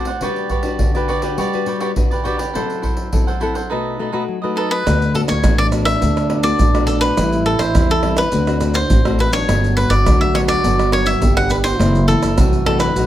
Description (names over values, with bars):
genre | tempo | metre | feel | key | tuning
samba and choro | 104 BPM | 4/4 | straight | D major | A4 = 440 Hz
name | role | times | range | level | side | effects
cavaquinho | accompaniment | 0.0-4.9 s | D#4 to F#5 | -23 LUFS | right 4 dB | none
nylon-string guitar | accompaniment | 0.0-13.1 s | F#2 to B4 | -23 LUFS | left 5 dB | none
pandeiro, surdo, maracas and tamborim | percussion | 0.1-13.1 s | none | -19 LUFS | right 1 dB | none
cavaquinho | melody | 4.6-13.1 s | A4 to F#5 | -19 LUFS | left 1 dB | none
breathy trombone | second line | 4.9-13.1 s | D4 to G4 | -22 LUFS | right 5 dB | none
upright bass | bass | 4.9-13.1 s | F#1 to E2 | -18 LUFS | equal | none
room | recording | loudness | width
light reverb | none | -14 LUFS | side -12 dB against mid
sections
0.0-4.9 A section; 4.9-13.1 B section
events
none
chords
0.2 Gmaj7; 2.5 F#m7b5; 3.7 B7; 4.9 D6; 7.2 Am7; 8.3 D7; 9.5 Gmaj7; 11.8 F#m7b5